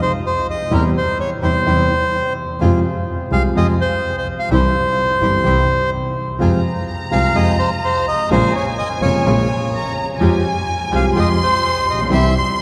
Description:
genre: tango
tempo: 126 BPM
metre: 4/4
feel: rubato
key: F minor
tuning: A4 = 436 Hz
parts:
  - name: bandoneon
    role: melody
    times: 0.0-12.5 s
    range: Bb4 to C6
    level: -22 LUFS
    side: equal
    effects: none
  - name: warm concert grand piano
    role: accompaniment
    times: 0.7-12.3 s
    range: F1 to G4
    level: -22 LUFS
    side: equal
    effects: none
  - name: bandoneon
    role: stabs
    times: 0.7-12.3 s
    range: Ab3 to Ab4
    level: -32 LUFS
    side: equal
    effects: none
  - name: clear double bass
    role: bass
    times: 0.7-12.3 s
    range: F1 to F2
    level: -23 LUFS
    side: equal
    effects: none
  - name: warm studio violin section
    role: second line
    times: 6.4-12.6 s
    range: Ab5 to C6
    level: -24 LUFS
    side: equal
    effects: none
room: wet cathedral reverb, RT60 5.9 s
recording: recorded in a church or concert hall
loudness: -17 LUFS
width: mono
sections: 0.0-12.6 A section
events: none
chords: 0.0 F7(no3) (rootless); 0.7 C/E; 2.6 Fm; 4.5 C; 6.4 Fm; 8.3 Bbm7; 10.2 Fmadd9; 12.1 C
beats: 0.23 | 0.71 1.18 1.65 2.12 | 2.60 3.07 3.54 4.02 | 4.49 4.97 5.44 5.92 | 6.40 6.88 7.35 7.83 | 8.30 8.78 9.25 9.72 | 10.20 10.67 11.15 11.62 | 12.10 12.58

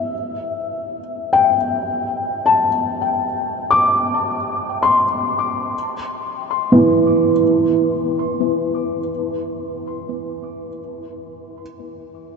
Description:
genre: ambient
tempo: free time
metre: none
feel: none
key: unclear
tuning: A4 = 440 Hz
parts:
  - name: felt-muted upright piano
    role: solo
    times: 0.0-12.4 s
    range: E3 to D6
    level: -17 LUFS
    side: left 1 dB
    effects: ping-pong delay
room: wet huge ambient reverb, RT60 7.7 s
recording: nothing above 8.0 kHz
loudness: -16 LUFS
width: side -5 dB against mid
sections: 0.0-12.4 A section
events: none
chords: 0.0 Emadd11; 5.7 N.C.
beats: free time

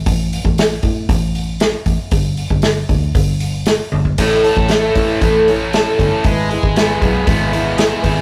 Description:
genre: folk rock and heartland rock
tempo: 117 BPM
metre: 4/4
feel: straight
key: A major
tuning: A4 = 440 Hz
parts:
  - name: fingered electric bass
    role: bass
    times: 0.0-8.2 s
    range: G1 to A2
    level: -22 LUFS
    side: equal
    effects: none
  - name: vintage drum kit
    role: drums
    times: 0.1-8.2 s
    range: crash cymbal, hi-hat, kick drum, snare drum, toms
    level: -19 LUFS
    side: equal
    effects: none
  - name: picked twelve-string acoustic guitar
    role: accompaniment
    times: 4.2-8.2 s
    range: A2 to C#5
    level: -19 LUFS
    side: equal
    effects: none
  - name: overdriven electric guitar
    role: riff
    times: 4.2-8.2 s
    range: A2 to A4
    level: -21 LUFS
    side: equal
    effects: spring reverb
room: light reverb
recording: rough rehearsal-room recording, tube saturation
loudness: -15 LUFS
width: mono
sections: 0.0-8.2 A section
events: drum fill 3.9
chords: 0.1 N.C.; 2.1 G5; 4.2 A; 6.2 E/G#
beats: | 0.06 0.58 1.09 1.61 | 2.12 2.64 3.15 3.67 | 4.18 4.70 5.21 5.73 | 6.24 6.75 7.27 7.78

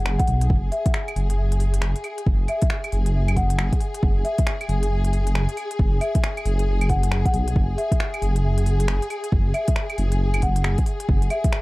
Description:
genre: future garage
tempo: 136 BPM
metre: 4/4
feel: swing 62% on 16ths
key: unclear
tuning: A4 = 441 Hz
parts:
  - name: marimba with soft mallets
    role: melody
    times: 0.0-11.6 s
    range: E5 to F#5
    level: -30 LUFS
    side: left 2 dB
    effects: analog delay
  - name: rich symphonic string section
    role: sustained chords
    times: 0.0-11.6 s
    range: G#4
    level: -31 LUFS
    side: left 2 dB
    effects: sidechain pumping
  - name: dark detuned saw bass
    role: bass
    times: 0.0-11.3 s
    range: F#1 to B1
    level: -21 LUFS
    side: equal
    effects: tube saturation, sidechain pumping
  - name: organic electronic drum kit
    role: drums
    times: 0.1-11.6 s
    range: claves, finger snaps, hi-hat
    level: -30 LUFS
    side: equal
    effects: none
  - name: electronic kick drum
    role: drums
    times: 0.2-11.5 s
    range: none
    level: -21 LUFS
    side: equal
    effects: none
room: digital ambience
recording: dark, warm production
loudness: -19 LUFS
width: side -21 dB against mid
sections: 0.0-11.6 A section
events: none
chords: 0.0 F#sus2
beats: 0.06 | 0.50 0.94 1.38 1.82 | 2.26 2.71 3.15 3.59 | 4.03 4.47 4.91 5.35 | 5.79 6.24 6.68 7.12 | 7.56 8.00 8.44 8.88 | 9.32 9.76 10.21 10.65 | 11.09 11.53

